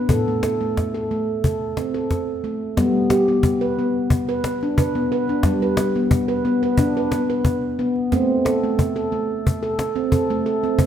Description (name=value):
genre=world meditative, meditative tuned percussion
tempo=90 BPM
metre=4/4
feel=straight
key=unclear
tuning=A4 = 439 Hz
part: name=handpan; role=arpeggios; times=0.0-10.9 s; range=A2 to B4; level=-19 LUFS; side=equal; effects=none
part: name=cajon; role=percussion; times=0.1-10.9 s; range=none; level=-22 LUFS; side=left 1 dB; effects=none
room=wet concert hall reverb, RT60 1.9 s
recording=none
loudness=-18 LUFS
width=side -9 dB against mid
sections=0.0-2.8 A section; 2.8-10.9 B section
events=none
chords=0.1 N.C.; 2.8 G; 8.1 Am